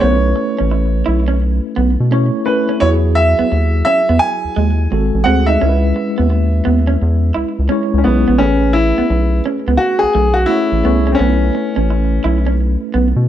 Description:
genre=R&B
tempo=86 BPM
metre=4/4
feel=swing 64% on 16ths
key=unclear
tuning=A4 = 440 Hz
part: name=warm grand piano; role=melody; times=0.0-12.5 s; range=B3 to G#5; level=-17 LUFS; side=equal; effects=none
part: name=electric guitar through a small old amp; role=second line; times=0.0-13.1 s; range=G#3 to E4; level=-21 LUFS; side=right 5 dB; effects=slapback echo
part: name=mellow tine electric piano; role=accompaniment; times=0.0-13.3 s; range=F#3 to C#5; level=-19 LUFS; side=left 1 dB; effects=medium stereo tremolo
part: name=round analog bass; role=bass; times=0.0-13.3 s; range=G#1 to B2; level=-15 LUFS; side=equal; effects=none
room=light reverb, digital ambience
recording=none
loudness=-12 LUFS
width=side -11 dB against mid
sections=0.0-8.4 A section; 8.4-13.3 A section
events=none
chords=0.0 B9sus4; 2.8 Emaj9; 4.9 G#7b9; 5.6 C#m7; 8.4 Amaj9; 11.2 B9sus4

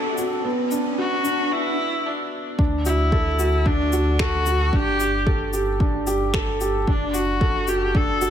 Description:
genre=piano and strings electronica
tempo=112 BPM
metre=4/4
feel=straight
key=D major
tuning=A4 = 440 Hz
part: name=clear viola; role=melody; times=0.0-8.3 s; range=D4 to A4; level=-25 LUFS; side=left 2 dB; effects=ping-pong delay
part: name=felt-muted upright piano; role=riff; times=0.0-8.3 s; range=B3 to A4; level=-24 LUFS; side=right 1 dB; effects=ping-pong delay
part: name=warm sub bass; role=bass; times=0.0-8.3 s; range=F#1 to D2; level=-25 LUFS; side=equal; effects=sidechain pumping, high-pass filter
part: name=riser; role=sound effects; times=0.0-1.5 s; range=none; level=-30 LUFS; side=left 2 dB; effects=none
part: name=electronic shaker and finger snaps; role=drums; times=0.2-8.3 s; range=none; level=-32 LUFS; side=left 3 dB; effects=overdrive, high-pass filter on perc, high-pass filter on snare, high-pass filter on room
part: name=electronic kick drum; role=drums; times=2.6-8.1 s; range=none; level=-22 LUFS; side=equal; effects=overdrive
room=light reverb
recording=none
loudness=-19 LUFS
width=side -9 dB against mid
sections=0.0-2.6 A section; 2.6-8.3 B section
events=build-up 0.0-2.6; riser 0.0-1.5; break 1.5-2.6; drop 2.6-8.3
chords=0.4 Bm; 2.6 D; 4.7 Gsus2; 6.9 D/F#

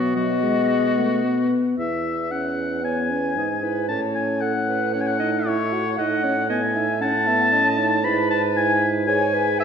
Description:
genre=quick classical-period movement for wind quintet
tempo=114 BPM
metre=4/4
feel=rubato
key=E major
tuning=A4 = 442 Hz
part: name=clear oboe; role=second line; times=0.0-9.6 s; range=F#4 to B5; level=-23 LUFS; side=left 2 dB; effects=none
part: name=dark French horn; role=accompaniment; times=0.0-9.6 s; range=F#3 to G#4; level=-26 LUFS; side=equal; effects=none
part: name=warm clarinet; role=accompaniment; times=0.0-9.6 s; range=B3 to G#5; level=-26 LUFS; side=right 3 dB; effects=none
part: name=dark bassoon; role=bass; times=0.0-9.6 s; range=E2 to B2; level=-26 LUFS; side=right 2 dB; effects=none
part: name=mellow hollow silver concert flute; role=melody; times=0.2-9.6 s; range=C#5 to B5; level=-30 LUFS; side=left 6 dB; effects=none
room=wet recital hall reverb, RT60 1.4 s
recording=dark, warm production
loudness=-19 LUFS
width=side -7 dB against mid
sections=0.0-1.8 A section; 1.8-9.6 B section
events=none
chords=0.0 B; 1.8 E; 3.9 F#m/A; 8.1 E/G#

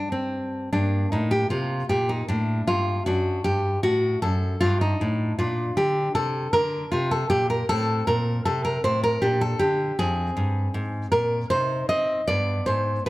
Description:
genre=classical, baroque-style dance for nylon-string guitar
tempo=78 BPM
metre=3/4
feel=rubato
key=G minor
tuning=A4 = 443 Hz
part: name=nylon-string guitar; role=solo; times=0.0-13.1 s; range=F2 to Eb5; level=-21 LUFS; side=equal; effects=none
room=moderate recital hall reverb, RT60 1.6 s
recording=none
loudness=-21 LUFS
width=side -18 dB against mid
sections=0.7-13.1 A section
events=none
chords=0.0 G5; 0.7 Gm; 3.1 D/F#; 4.6 G5; 5.4 Bb; 7.7 Am; 9.2 Bb; 10.0 Fm; 11.5 Cm; 12.3 G

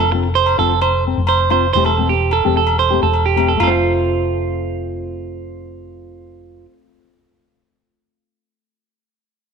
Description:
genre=highlife guitar band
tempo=129 BPM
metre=4/4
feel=straight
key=F major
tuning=A4 = 440 Hz
part: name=nylon-string guitar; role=accompaniment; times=0.0-7.2 s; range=E3 to G4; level=-22 LUFS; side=left 13 dB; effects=none
part: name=clean electric guitar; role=arpeggios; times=0.0-6.7 s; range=F4 to C5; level=-17 LUFS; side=right 9 dB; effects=slapback echo
part: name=hollow-body short-scale fingered electric bass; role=bass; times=0.0-6.7 s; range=E1 to F1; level=-20 LUFS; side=left 1 dB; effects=none
part: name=agogo bells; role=percussion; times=0.0-3.7 s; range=none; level=-24 LUFS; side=left 14 dB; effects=none
room=moderate plate reverb, RT60 2.3 s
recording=1960s-style stereo with parts hard left and right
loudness=-14 LUFS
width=side -6 dB against mid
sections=0.0-3.6 A section; 3.6-7.3 B section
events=none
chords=0.0 F; 1.7 C6/E; 3.6 F

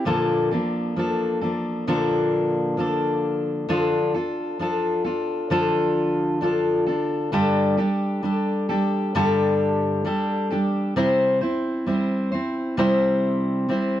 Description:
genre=pop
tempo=66 BPM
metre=4/4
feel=straight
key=unclear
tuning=A4 = 443 Hz
part: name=fingerpicked steel-string acoustic guitar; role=solo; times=0.0-14.0 s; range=G2 to C5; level=-20 LUFS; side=left 1 dB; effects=none
room=small room ambience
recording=dry, close 1970s-style studio recording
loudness=-20 LUFS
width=side -12 dB against mid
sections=0.1-14.0 A section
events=none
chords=0.1 Bbmaj7; 3.7 Dm; 7.3 Gsus2; 11.0 C

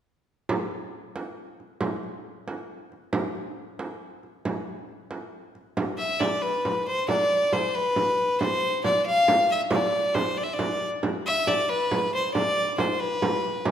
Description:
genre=medieval dance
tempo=91 BPM (dotted quarters)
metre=6/8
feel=straight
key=D dorian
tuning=A4 = 438 Hz
part: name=frame drum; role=percussion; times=0.5-13.7 s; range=none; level=-29 LUFS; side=right 2 dB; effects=none
part: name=clear fiddle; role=melody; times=6.0-13.7 s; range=B4 to F5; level=-23 LUFS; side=left 1 dB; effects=none
room=wet recital hall reverb, RT60 1.8 s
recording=none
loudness=-23 LUFS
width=side -9 dB against mid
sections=0.5-5.8 A section; 5.8-13.7 B section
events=none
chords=none

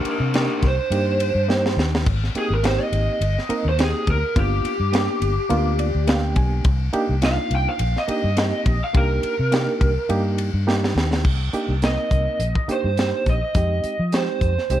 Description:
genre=straight-eighth soul blues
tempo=104 BPM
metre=4/4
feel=swing 54% on 16ths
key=C minor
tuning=A4 = 440 Hz
part: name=lead guitar through a small cranked amp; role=melody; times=0.0-14.8 s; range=D4 to G5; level=-24 LUFS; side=right 1 dB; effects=overdrive
part: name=barky reed electric piano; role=accompaniment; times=0.0-14.8 s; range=Ab3 to Ab5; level=-26 LUFS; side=right 2 dB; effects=overdrive, fast tremolo
part: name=vintage muted fingered electric bass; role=bass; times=0.0-14.8 s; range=G1 to F3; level=-22 LUFS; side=left 1 dB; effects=none
part: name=tight funk drum kit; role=drums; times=0.1-14.8 s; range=crash cymbal, hi-hat, kick drum, ride cymbal, snare drum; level=-24 LUFS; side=equal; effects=none
room=small room ambience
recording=none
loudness=-18 LUFS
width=side -12 dB against mid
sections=0.0-11.2 A section; 11.2-14.8 B section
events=lead electric guitar solo 0.0-11.2; drum fill 1.5-2.1, 10.7-11.2; reed electric piano fill 5.5-6.7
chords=0.0 Cm9; 2.1 Abmaj7; 4.4 G7#9; 6.7 Cm9; 13.6 Fm9

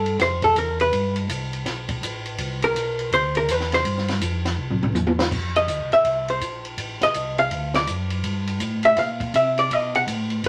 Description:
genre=soul jazz organ trio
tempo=164 BPM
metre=4/4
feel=swing 64% on 8ths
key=C major, F major from 5.3 s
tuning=A4 = 439 Hz
part: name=archtop guitar, miked and amplified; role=accompaniment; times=0.0-10.5 s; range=A4 to F#5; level=-22 LUFS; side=equal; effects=none
part: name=mellow tonewheel organ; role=bass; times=0.0-10.5 s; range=A1 to C3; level=-30 LUFS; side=equal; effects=chorus vibrato, slow rotary speaker
part: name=compact cocktail drum kit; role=drums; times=0.1-10.5 s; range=crash cymbal, hi-hat, kick drum, ride cymbal, snare drum, toms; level=-30 LUFS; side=equal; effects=none
room=moderate studio reverb, RT60 0.6 s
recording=vinyl crackle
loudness=-23 LUFS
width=mono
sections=0.0-5.3 A section; 5.3-10.5 A section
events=hollow-body jazz guitar solo 0.0-10.5; drum fill 4.6-5.3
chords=0.0 Dmadd9 (rootless); 0.9 Gadd9; 2.4 Cmaj9; 3.9 Fsus2; 4.6 C; 5.3 Fmaj7; 6.8 Adim; 7.5 D; 8.2 Gm7; 9.7 B7

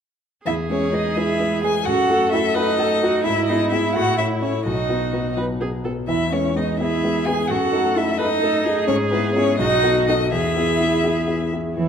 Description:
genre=quick classical-period movement for piano quartet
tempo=85 BPM (dotted quarters)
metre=6/8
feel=straight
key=E major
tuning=A4 = 440 Hz
part: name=rich viola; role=accompaniment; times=0.4-11.9 s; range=E4 to B4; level=-25 LUFS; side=right 1 dB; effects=none
part: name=rich violin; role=melody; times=0.5-11.9 s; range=B4 to G#5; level=-24 LUFS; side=left 8 dB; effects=none
part: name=dark cello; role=second line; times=0.5-11.9 s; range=E3 to G#4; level=-23 LUFS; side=right 7 dB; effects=none
part: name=warm concert grand piano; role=accompaniment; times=0.5-11.9 s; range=B1 to C#5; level=-22 LUFS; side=left 2 dB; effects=none
room=wet recital hall reverb, RT60 1.6 s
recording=dark, warm production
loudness=-18 LUFS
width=side -7 dB against mid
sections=0.5-11.8 A section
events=none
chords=0.5 E; 1.9 D#dim/F#; 3.3 E/G#; 4.0 A; 4.7 B; 6.1 E; 7.5 D#dim/F#; 8.9 E/G#; 9.6 B7; 10.3 E

